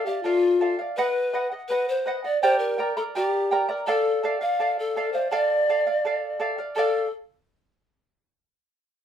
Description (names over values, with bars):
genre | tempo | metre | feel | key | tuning
andean folk | 83 BPM | 2/4 | straight | D minor | A4 = 440 Hz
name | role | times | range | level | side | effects
breathy polished pan flute | melody | 0.0-7.1 s | F4 to F5 | -23 LUFS | left 2 dB | none
charango | accompaniment | 0.0-7.1 s | G4 to Bb5 | -26 LUFS | right 3 dB | none
room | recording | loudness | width
moderate studio ambience, RT60 0.5 s | band playing live in one room | -22 LUFS | side -9 dB against mid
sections
0.0-6.8 A section; 6.8-8.2 B section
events
none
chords
0.0 Dm; 1.0 B; 2.4 Gm; 3.9 Dm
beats
0.24 | 0.97 1.69 | 2.42 3.14 | 3.87 4.59 | 5.32 6.04 | 6.77